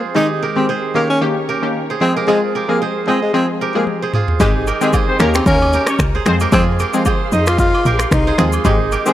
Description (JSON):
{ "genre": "afrobeats", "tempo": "113 BPM", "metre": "4/4", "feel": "swing 55% on 16ths", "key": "unclear", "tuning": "A4 = 440 Hz", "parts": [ { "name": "dark symphonic string section", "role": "sustained chords", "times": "0.0-9.1 s", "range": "Eb3 to C6", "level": "-29 LUFS", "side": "left 3 dB", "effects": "none" }, { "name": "kora", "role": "riff", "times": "0.0-9.1 s", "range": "Eb4 to Eb5", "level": "-21 LUFS", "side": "right 5 dB", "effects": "analog delay" }, { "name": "glassy wavetable pluck", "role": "accompaniment", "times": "0.1-9.1 s", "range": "Eb3 to Ab4", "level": "-20 LUFS", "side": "left 1 dB", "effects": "chorus" }, { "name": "breathy tenor saxophone", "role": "melody", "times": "0.2-9.1 s", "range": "Ab3 to F4", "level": "-19 LUFS", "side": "left 1 dB", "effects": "analog delay" }, { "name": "afro-pop drum kit", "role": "drums", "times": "3.9-9.1 s", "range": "finger snaps, kick drum, rim click, shaker, toms", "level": "-18 LUFS", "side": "equal", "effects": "none" }, { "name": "woody log drum bass", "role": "bass", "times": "4.4-9.0 s", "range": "Ab1 to F2", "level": "-17 LUFS", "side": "equal", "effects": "none" }, { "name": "agogo bells and woodblock", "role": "percussion", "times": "4.4-9.1 s", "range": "none", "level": "-26 LUFS", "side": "right 2 dB", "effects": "none" }, { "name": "clear horn section", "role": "second line", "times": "4.8-9.1 s", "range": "Ab3 to Db5", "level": "-21 LUFS", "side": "left 2 dB", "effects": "none" } ], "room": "little or no reverb", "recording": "dry, gritty hardware recording", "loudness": "-13 LUFS", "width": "side -12 dB against mid", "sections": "0.0-4.4 A section; 4.4-9.1 B section", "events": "drum fill 3.9-4.4", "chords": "0.2 Abmaj7; 0.9 Eb7; 2.0 Fm; 4.4 Abmaj7; 5.2 Eb7; 6.3 Fm" }